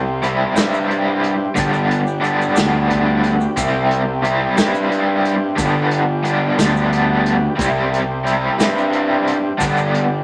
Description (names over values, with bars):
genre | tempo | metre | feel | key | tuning
psychedelic rock | 60 BPM (dotted quarters) | 6/8 | straight | C major | A4 = 440 Hz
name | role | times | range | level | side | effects
overdriven combo organ | sustained chords | 0.0-10.2 s | D4 to G5 | -27 LUFS | equal | none
fuzz picked electric bass | bass | 0.0-10.2 s | G1 to G2 | -23 LUFS | equal | overdrive
raw garage guitar | riff | 0.2-10.0 s | C3 to E4 | -20 LUFS | equal | overdrive, tremolo
vintage drum kit | drums | 0.2-10.1 s | hi-hat, kick drum, snare drum | -24 LUFS | equal | none
maracas | percussion | 0.2-9.9 s | none | -36 LUFS | equal | none
room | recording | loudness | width
wet studio reverb, RT60 0.8 s | none | -17 LUFS | mono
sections
0.0-10.2 A section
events
none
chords
0.0 C; 1.6 G; 3.6 C; 5.6 G; 7.6 C; 9.6 G